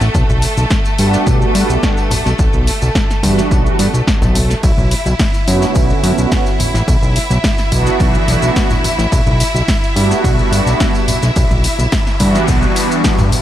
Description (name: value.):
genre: nu-disco, nu disco.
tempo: 107 BPM.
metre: 4/4.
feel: straight.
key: unclear.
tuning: A4 = 441 Hz.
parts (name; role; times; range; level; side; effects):
bright symphonic string section; sustained chords; 0.0-13.4 s; A3 to E5; -21 LUFS; equal; sidechain pumping.
fat analog bass; bass; 0.0-13.4 s; A1 to G2; -15 LUFS; equal; tube saturation.
house drum kit; drums; 0.0-13.4 s; hi-hat, ride cymbal, snare drum, tambourine; -21 LUFS; left 1 dB; studio reverb, dub echo.
maracas and congas; percussion; 0.0-13.4 s; none; -24 LUFS; left 1 dB; dub echo.
electronic kick drum; drums; 0.1-13.2 s; none; -16 LUFS; equal; studio reverb.
warm analog pad; accompaniment; 1.0-13.2 s; D3 to F#4; -19 LUFS; right 2 dB; wide subtle chorus, sidechain pumping, dub echo.
noise sweep; sound effects; 12.0-13.4 s; none; -25 LUFS; left 3 dB; none.
room: little or no reverb.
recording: echo-heavy mix.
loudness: -11 LUFS.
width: side -12 dB against mid.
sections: 0.0-13.4 A section.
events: noise sweep 12.0-13.4.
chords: 0.1 Gmaj9/B; 2.1 Em9/B; 4.6 Bm9; 6.9 D69/B; 9.1 Gmaj9/B; 11.1 Em9/B.